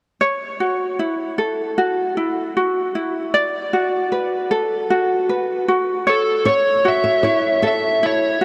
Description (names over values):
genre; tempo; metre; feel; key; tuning
pop; 77 BPM; 4/4; straight; unclear; A4 = 439 Hz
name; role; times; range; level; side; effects
ukulele; accompaniment; 0.2-8.4 s; E4 to D5; -21 LUFS; equal; none
overdriven slide guitar; melody; 6.1-8.4 s; A4 to E5; -20 LUFS; equal; analog chorus, delay
flamenco guitar; arpeggios; 6.5-7.8 s; C#5 to E5; -24 LUFS; equal; delay
room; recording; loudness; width
wet huge ambient reverb, RT60 4.8 s; dreamy mix soaked in reverb; -19 LUFS; mono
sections
0.2-6.5 A section; 6.5-8.4 B section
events
none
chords
0.2 F#m7; 3.3 D6; 6.1 N.C.; 6.5 F#m7